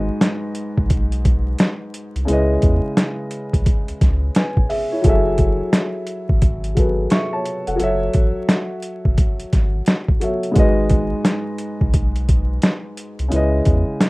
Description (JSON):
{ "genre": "hip hop, boom-bap hip-hop", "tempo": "87 BPM", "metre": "4/4", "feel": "swing 62% on 16ths", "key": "C# minor", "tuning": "A4 = 440 Hz", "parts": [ { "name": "dark upright piano", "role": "accompaniment", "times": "0.0-14.1 s", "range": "G#2 to C#6", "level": "-22 LUFS", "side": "equal", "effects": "high-pass filter, low-pass filter" }, { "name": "warm sub bass", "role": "bass", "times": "0.0-13.8 s", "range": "E#1 to E2", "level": "-21 LUFS", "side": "equal", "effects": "none" }, { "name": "boom bap sampler-style drum kit", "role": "drums", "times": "0.2-14.1 s", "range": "hi-hat, kick drum, snare drum", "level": "-17 LUFS", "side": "equal", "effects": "none" } ], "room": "little or no reverb", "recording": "rough home demo mix, vinyl crackle", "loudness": "-16 LUFS", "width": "side -23 dB against mid", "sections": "0.0-14.1 A section", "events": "none", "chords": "0.0 G#m7; 2.3 C#m9; 5.0 F#m9; 10.6 G#m7; 13.3 C#m9", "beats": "0.22 0.91 1.60 | 2.29 2.98 3.67 4.36 | 5.04 5.74 6.42 7.11 | 7.80 8.49 9.18 9.87 | 10.56 11.25 11.94 12.63 | 13.32 14.01" }